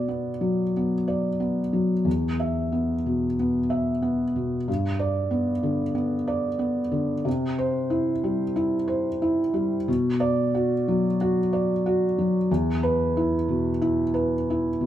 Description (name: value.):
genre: neoclassical minimalist piano.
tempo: 92 BPM.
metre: 4/4.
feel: rubato.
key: B phrygian.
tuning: A4 = 439 Hz.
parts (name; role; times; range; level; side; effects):
felt-muted upright piano; solo; 0.0-14.9 s; E2 to E5; -22 LUFS; equal; none.
room: moderate studio reverb, RT60 0.9 s.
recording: band playing live in one room.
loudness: -22 LUFS.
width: side -11 dB against mid.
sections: 0.0-14.9 A section.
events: none.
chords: 0.0 Bm; 2.1 E5; 4.7 G; 7.3 C; 9.9 Bm; 12.5 E5.